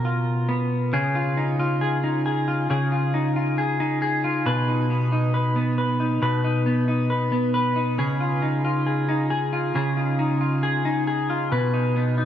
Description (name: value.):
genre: dream pop.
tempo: 68 BPM.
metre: 4/4.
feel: straight.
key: unclear.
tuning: A4 = 440 Hz.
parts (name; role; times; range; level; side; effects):
clean electric guitar; solo; 0.0-12.3 s; B2 to B4; -20 LUFS; equal; lush chorus, tape echo.
room: moderate shimmer reverb, RT60 5.6 s.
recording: nothing above 10.4 kHz.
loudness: -20 LUFS.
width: side -10 dB against mid.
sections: 0.9-12.3 A section.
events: none.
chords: 0.0 A#5; 0.9 C#add9; 4.5 B; 8.0 C#add9; 11.5 B.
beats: 0.05 | 0.93 1.81 2.69 3.58 | 4.46 5.34 6.22 7.11 | 7.99 8.87 9.75 10.64 | 11.52.